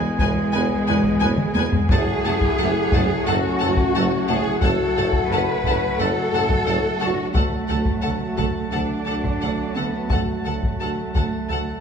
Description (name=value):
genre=cinematic, epic orchestral film score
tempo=88 BPM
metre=4/4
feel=straight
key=F# minor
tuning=A4 = 440 Hz
part: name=clear woodwind section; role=sustained chords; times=0.0-11.8 s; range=F#3 to A5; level=-31 LUFS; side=left 3 dB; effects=none
part: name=mellow trombone section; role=sustained chords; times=0.0-11.8 s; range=E3 to A3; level=-31 LUFS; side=right 3 dB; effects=none
part: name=warm French horn section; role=sustained chords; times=0.0-11.8 s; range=E3 to A4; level=-29 LUFS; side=left 6 dB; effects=none
part: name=warm symphonic cello section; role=bass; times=0.0-11.8 s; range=G#3 to B4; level=-24 LUFS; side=right 1 dB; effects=none
part: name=warm symphonic violin section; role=melody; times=0.2-11.6 s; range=G#5 to A5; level=-32 LUFS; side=left 4 dB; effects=none
part: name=warm symphonic violin section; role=second line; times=0.2-11.6 s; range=F#5 to G#5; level=-31 LUFS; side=left 5 dB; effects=none
part: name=warm symphonic viola section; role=accompaniment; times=0.2-11.6 s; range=A3 to B4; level=-33 LUFS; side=right 2 dB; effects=none
part: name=clear symphonic double bass section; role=bass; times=0.2-11.6 s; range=D2 to F#2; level=-29 LUFS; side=right 3 dB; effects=none
part: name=warm tuba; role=bass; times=0.2-11.6 s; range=E1 to D2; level=-29 LUFS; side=right 3 dB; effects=none
part: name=taiko ensemble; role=drums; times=0.2-11.8 s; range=none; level=-24 LUFS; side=left 1 dB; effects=none
room=wet recital hall reverb, RT60 1.8 s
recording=recorded in a church or concert hall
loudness=-18 LUFS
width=side -7 dB against mid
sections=0.0-11.8 A section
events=drum fill 1.2-1.9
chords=0.0 E; 1.9 F#m; 7.3 D